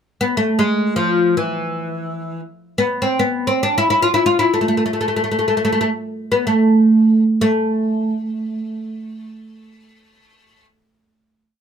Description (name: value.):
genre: Arabic maqam ensemble.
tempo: free time.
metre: none.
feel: none.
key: A maqam nahawand.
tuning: A4 = 440 Hz.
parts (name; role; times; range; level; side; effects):
oud; solo; 0.2-10.6 s; E3 to F4; -16 LUFS; equal; none.
room: little or no reverb.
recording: close, detailed microphones.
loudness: -15 LUFS.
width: side -8 dB against mid.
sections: 0.0-7.4 free-time section; 7.4-11.6 final note.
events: slowing down 3.5-7.4.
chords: none.